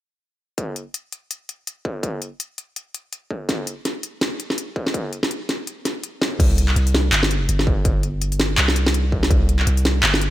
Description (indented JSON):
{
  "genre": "half-time drum and bass",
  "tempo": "165 BPM",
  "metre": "4/4",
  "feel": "swing 57% on 16ths, half-time",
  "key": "unclear",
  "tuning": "A4 = 440 Hz",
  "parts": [
    { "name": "electronic kick drum", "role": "drums", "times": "0.6-9.4 s", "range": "none", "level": "-22 LUFS", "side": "equal", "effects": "distortion, high-pass filter on kick, high-pass filter on room" },
    { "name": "industrial drum kit", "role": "drums", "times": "0.6-10.3 s", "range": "crash cymbal, handclaps, hi-hat, snare drum", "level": "-21 LUFS", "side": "equal", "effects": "none" },
    { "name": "long sustained 808-style bass", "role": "bass", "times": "6.4-10.3 s", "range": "G1 to C2", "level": "-19 LUFS", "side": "equal", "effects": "none" }
  ],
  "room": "little or no reverb",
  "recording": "none",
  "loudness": "-19 LUFS",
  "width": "side -14 dB against mid",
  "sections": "0.6-6.4 A section; 6.4-10.3 B section",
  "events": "drop 6.4-10.3",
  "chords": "none",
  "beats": "| 0.58 0.94 1.31 1.67 | 2.03 2.40 2.76 3.12 | 3.49 3.85 4.22 4.58 | 4.94 5.31 5.67 6.03 | 6.40 6.76 7.12 7.49 | 7.85 8.22 8.58 8.94 | 9.31 9.67 10.03"
}